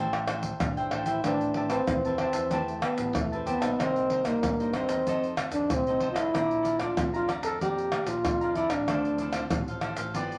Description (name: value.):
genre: samba and choro.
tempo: 94 BPM.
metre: 4/4.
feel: straight.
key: A minor.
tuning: A4 = 440 Hz.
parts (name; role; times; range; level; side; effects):
cavaquinho; accompaniment; 0.0-10.4 s; D4 to Bb5; -37 LUFS; equal; none.
nylon-string guitar; accompaniment; 0.0-10.4 s; F2 to C5; -40 LUFS; equal; none.
modern bright fingered electric bass; bass; 0.0-10.4 s; G1 to G2; -41 LUFS; equal; none.
tube shaker, pandeiro, tamborim and surdo; percussion; 0.1-10.4 s; none; -34 LUFS; equal; none.
breathy trombone; second line; 0.6-9.4 s; A3 to A4; -30 LUFS; equal; none.
room: moderate studio reverb, RT60 0.7 s.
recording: none.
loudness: -28 LUFS.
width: mono.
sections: 0.0-1.2 A section; 1.2-10.4 B section.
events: trombone solo 1.2-10.4.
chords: 0.0 Am7; 1.2 Am9; 3.8 Cm7; 5.1 F7; 6.3 Bbmaj7; 8.9 Dm9.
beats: 0.61 | 1.25 1.88 2.52 3.16 | 3.80 4.43 5.07 5.71 | 6.35 6.98 7.62 8.26 | 8.89 9.53 10.16.